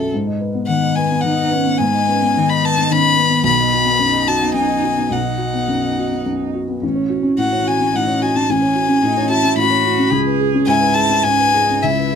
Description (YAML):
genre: neoclassical piano and strings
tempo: 108 BPM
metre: 3/4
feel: rubato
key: unclear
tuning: A4 = 438 Hz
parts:
  - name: warm violin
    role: melody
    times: 0.0-12.2 s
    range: A4 to B5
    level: -17 LUFS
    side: left 4 dB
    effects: none
  - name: felt-muted upright piano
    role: accompaniment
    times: 0.0-12.2 s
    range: A1 to E5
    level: -18 LUFS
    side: left 2 dB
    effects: none
  - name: dark cello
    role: second line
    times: 0.7-12.2 s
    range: B3 to G#4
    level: -23 LUFS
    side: right 12 dB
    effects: none
room: light reverb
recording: close, detailed microphones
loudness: -14 LUFS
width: side -7 dB against mid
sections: 0.1-12.2 A section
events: none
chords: 0.1 G#m; 3.5 B; 6.8 F#madd9/A; 10.1 C#m7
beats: | 0.12 0.68 1.24 | 1.80 2.36 2.91 | 3.46 4.01 4.56 | 5.12 5.70 6.27 | 6.83 7.38 7.94 | 8.49 9.03 9.58 | 10.12 10.67 11.24 | 11.84